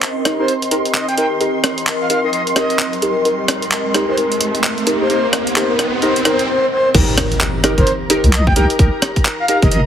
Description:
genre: UK garage, two-step garage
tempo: 130 BPM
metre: 4/4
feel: swing 61% on 16ths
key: C minor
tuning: A4 = 445 Hz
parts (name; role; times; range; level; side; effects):
- soft string machine; sustained chords; 0.0-9.9 s; Bb5 to C6; -27 LUFS; right 2 dB; phaser, ensemble chorus, sidechain pumping
- deep mellow chord stab; stabs; 0.0-9.7 s; Eb4 to Bb4; -19 LUFS; equal; ensemble chorus, ping-pong delay
- breakbeat sampler-style drum kit; drums; 0.0-9.8 s; crash cymbal, handclaps, hi-hat, rim click; -18 LUFS; equal; high-pass filter on snare, high-pass filter on hats, high-pass filter on cymbals, high-pass filter on room
- riser and impact; sound effects; 1.6-8.8 s; none; -23 LUFS; equal; none
- airy breathy pad; texture; 0.0-6.5 s; C4 to Eb5; -24 LUFS; equal; chorus, sidechain pumping
- breathy flute-like synth lead; melody; 0.4-9.8 s; C5 to G5; -20 LUFS; left 1 dB; lush chorus, vintage 12-bit sampler grit, ping-pong delay
- deep soft wobble bass; bass; 6.9-9.9 s; G1 to C2; -14 LUFS; equal; chorus
- electronic kick drum; drums; 6.9-9.7 s; none; -14 LUFS; equal; none
room: light reverb, digital ambience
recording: heavily compressed radio sound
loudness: -13 LUFS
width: side -9 dB against mid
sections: 0.0-6.9 A section; 6.9-9.9 B section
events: build-up 0.0-6.9; filter sweep on synth stab 0.0-6.9; riser 1.6-6.5; drop 6.9-9.9; impact 6.9-8.8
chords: 0.0 Cm7

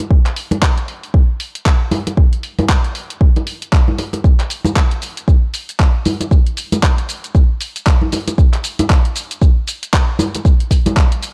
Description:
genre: house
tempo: 116 BPM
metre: 4/4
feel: swing 59% on 16ths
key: none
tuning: none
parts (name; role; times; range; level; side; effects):
- deep house drum kit; drums; 0.0-11.3 s; handclaps, hi-hat, shaker; -24 LUFS; equal; none
- electronic kick drum; drums; 0.1-11.1 s; none; -14 LUFS; equal; none
- congas; percussion; 0.5-10.9 s; none; -21 LUFS; equal; none
room: little or no reverb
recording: cassette tape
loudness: -15 LUFS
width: mono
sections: 0.0-11.3 A section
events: none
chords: none

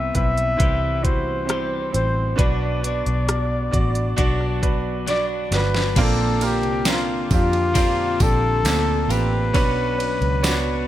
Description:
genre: pop ballad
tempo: 67 BPM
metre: 4/4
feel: straight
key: unclear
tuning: A4 = 440 Hz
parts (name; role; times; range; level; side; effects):
- mellow flugelhorn; melody; 0.0-10.9 s; F4 to E5; -24 LUFS; left 2 dB; none
- clear grand piano; accompaniment; 0.0-10.9 s; Bb2 to D5; -26 LUFS; right 4 dB; none
- twelve-string electric guitar; arpeggios; 0.0-10.9 s; Bb2 to C#5; -30 LUFS; left 7 dB; spring reverb, ping-pong delay
- vintage muted fingered electric bass; bass; 0.0-10.8 s; G1 to F2; -24 LUFS; equal; none
- smooth R&B drum kit; drums; 0.1-10.7 s; crash cymbal, hi-hat, kick drum, ride cymbal, rim click, snare drum; -23 LUFS; equal; none
- tambourine; percussion; 6.0-10.6 s; none; -34 LUFS; right 9 dB; none
room: light reverb, small room ambience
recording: none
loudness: -18 LUFS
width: side -13 dB against mid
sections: 0.0-6.0 A section; 6.0-10.9 B section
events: drum fill 5.1-6.0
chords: 0.0 Cmaj7; 2.4 Bm; 6.0 Bbadd9; 9.6 Bmadd9

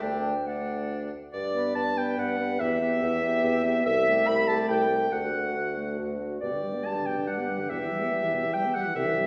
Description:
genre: quick classical-period movement for wind quintet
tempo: 142 BPM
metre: 3/4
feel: straight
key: G major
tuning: A4 = 440 Hz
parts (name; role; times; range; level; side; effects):
- concert flute; melody; 0.0-9.3 s; F#4 to G5; -39 LUFS; equal; none
- clear oboe; second line; 0.0-9.3 s; D4 to B5; -36 LUFS; equal; none
- mellow French horn; accompaniment; 0.0-9.3 s; B2 to B3; -36 LUFS; equal; none
- mellow clarinet; accompaniment; 0.0-9.3 s; D5 to B5; -31 LUFS; equal; none
- mellow bassoon; bass; 0.0-9.3 s; C2 to G2; -32 LUFS; equal; none
room: wet scoring stage reverb, RT60 1.6 s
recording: heard from further back in the room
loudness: -27 LUFS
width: mono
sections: 0.0-1.3 A section; 1.3-9.3 B section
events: none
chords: 0.0 D; 1.3 G; 2.6 Em; 3.9 Am7/C; 5.1 D; 6.4 G; 7.7 Em

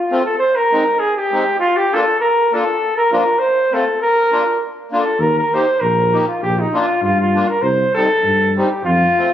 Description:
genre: alpine folk, alpine dance band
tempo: 99 BPM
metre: 2/4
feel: swing 55% on 8ths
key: Bb major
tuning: A4 = 440 Hz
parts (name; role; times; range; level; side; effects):
- warm flugelhorn; melody; 0.0-9.3 s; Eb4 to C5; -15 LUFS; equal; none
- accordion; accompaniment; 0.1-9.3 s; F3 to G4; -22 LUFS; left 2 dB; light tremolo tuning
- mellow tuba; bass; 5.2-9.1 s; Bb1 to G2; -19 LUFS; equal; none
room: light reverb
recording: recorded on a phone in the room, club reverb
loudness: -14 LUFS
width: side -10 dB against mid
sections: 0.0-9.3 A section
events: none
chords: 0.4 Ab; 1.6 Bb; 3.4 F; 4.0 Bb; 5.2 Eb; 6.4 Bb; 7.6 Cm

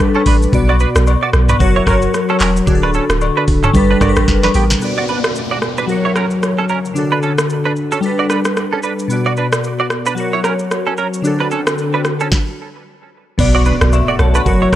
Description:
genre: afrobeats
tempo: 112 BPM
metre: 4/4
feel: swing 58% on 16ths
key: B minor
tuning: A4 = 440 Hz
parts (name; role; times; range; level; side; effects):
- glassy digital keys; accompaniment; 0.0-14.8 s; B2 to B5; -16 LUFS; left 1 dB; chorus
- afro-pop drum kit; drums; 0.0-14.8 s; crash cymbal, handclaps, hi-hat, kick drum, rim click, shaker, snare drum, toms; -18 LUFS; equal; vintage 12-bit sampler grit
- agogo bells and woodblock; percussion; 0.1-4.5, 13.5-14.8 s; none; -24 LUFS; left 9 dB; none
- direct-recorded clean electric guitar; riff; 0.2-14.8 s; B3 to D5; -20 LUFS; right 6 dB; analog chorus, tape echo
- punchy sub bass; bass; 0.3-4.8, 13.4-14.8 s; D1 to B1; -15 LUFS; equal; none
- downlifter, swell and impact; sound effects; 4.8-14.8 s; none; -28 LUFS; equal; none
room: light reverb, digital ambience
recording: none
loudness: -12 LUFS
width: side -12 dB against mid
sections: 0.0-4.8 A section; 4.8-13.4 B section; 13.4-14.8 C section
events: drum fill 4.3-4.8; stop 12.3-13.4; impact 13.4-14.8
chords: 0.0 Gadd9; 0.5 Bm; 1.6 F#; 2.7 D; 3.7 Gadd9; 4.8 Bm; 5.9 F#; 7.0 D; 8.0 Gadd9; 9.1 Bm; 10.2 F#; 11.2 D; 12.3 N.C.; 13.4 Bm

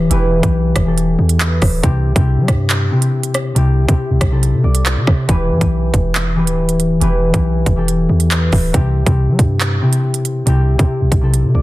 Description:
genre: hip hop, drill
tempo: 139 BPM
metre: 4/4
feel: half-time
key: E minor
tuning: A4 = 440 Hz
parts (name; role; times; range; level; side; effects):
- concert harp; accompaniment; 0.0-11.6 s; C3 to E5; -16 LUFS; left 2 dB; none
- hard-hitting 808-style bass; bass; 0.0-11.6 s; D1 to G3; -17 LUFS; right 1 dB; none
- drill drum kit; drums; 0.1-11.4 s; handclaps, hi-hat, kick drum, rim click; -16 LUFS; right 1 dB; none
room: light reverb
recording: dense, heavily limited modern master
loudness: -12 LUFS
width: side -17 dB against mid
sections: 0.0-5.3 A section; 5.3-11.6 B section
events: none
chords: 0.0 Em; 1.8 C; 5.3 Em; 8.7 C

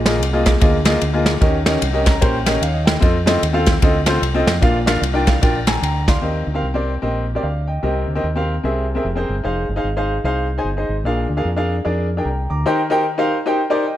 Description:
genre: uptempo gospel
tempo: 150 BPM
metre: 4/4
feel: swing 61% on 8ths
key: Eb major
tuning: A4 = 440 Hz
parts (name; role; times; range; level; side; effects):
- clear grand piano; accompaniment; 0.0-14.0 s; Bb2 to D6; -19 LUFS; left 1 dB; none
- fingered electric bass; bass; 0.0-12.6 s; F1 to F2; -21 LUFS; equal; none
- soft brush drum kit; drums; 0.1-6.2 s; kick drum, ride cymbal, snare drum; -17 LUFS; equal; none
room: light reverb, studio reverb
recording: none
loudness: -16 LUFS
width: side -12 dB against mid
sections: 0.0-6.2 A section; 6.2-12.7 B section; 12.7-14.0 A section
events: grand piano fill 1.8-3.0, 5.0-6.2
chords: 0.0 Bb7sus4; 1.4 Eb7; 3.0 F7; 4.6 Bb; 6.2 Eb6; 7.8 Cm7; 8.6 C7b13; 9.4 Fm7; 11.1 Bb7; 12.7 Eb6

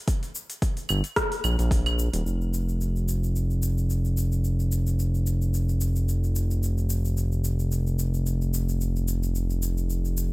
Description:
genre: organic downtempo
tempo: 110 BPM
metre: 4/4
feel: swing 55% on 16ths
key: unclear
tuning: A4 = 441 Hz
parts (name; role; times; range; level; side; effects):
- deep house drum kit; drums; 0.1-10.3 s; claves, hi-hat, rim click, shaker; -32 LUFS; equal; overdrive
- electronic kick drum; drums; 0.1-1.8 s; none; -25 LUFS; equal; overdrive
- smooth synth bass; bass; 0.9-10.3 s; Eb1 to Bb1; -23 LUFS; equal; sidechain pumping
room: little or no reverb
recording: none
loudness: -23 LUFS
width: side -22 dB against mid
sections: 0.0-2.3 A section; 2.3-10.3 B section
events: none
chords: none

